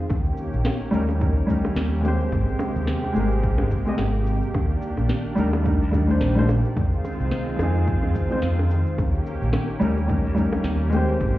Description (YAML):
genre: sunset chillout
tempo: 108 BPM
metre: 4/4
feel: swing 57% on 16ths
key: Eb major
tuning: A4 = 436 Hz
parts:
  - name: lush unison pad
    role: sustained chords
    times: 0.0-11.4 s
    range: C3 to G4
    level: -29 LUFS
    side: equal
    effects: chorus
  - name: overdriven fingered electric bass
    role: bass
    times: 0.1-11.3 s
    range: Ab1 to F2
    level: -23 LUFS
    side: equal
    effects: none
  - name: electronic kick drum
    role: drums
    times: 0.1-11.3 s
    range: none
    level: -25 LUFS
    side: equal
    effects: overdrive
  - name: electronic shaker and snare drum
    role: drums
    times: 0.1-11.4 s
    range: none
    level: -31 LUFS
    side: equal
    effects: none
  - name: bongos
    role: percussion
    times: 0.1-11.1 s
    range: none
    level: -31 LUFS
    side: equal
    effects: none
  - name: dark grand piano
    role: accompaniment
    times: 0.9-11.4 s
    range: F3 to Eb5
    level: -24 LUFS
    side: left 1 dB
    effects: auto-pan, ping-pong delay
room: light reverb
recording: heard muffled through a wall, stone room reverb, EQ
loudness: -20 LUFS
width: side -15 dB against mid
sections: 0.0-11.4 A section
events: none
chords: 0.1 Eb7; 2.3 Abmaj9; 4.5 Ebmaj7; 6.8 Fm7; 9.0 Eb7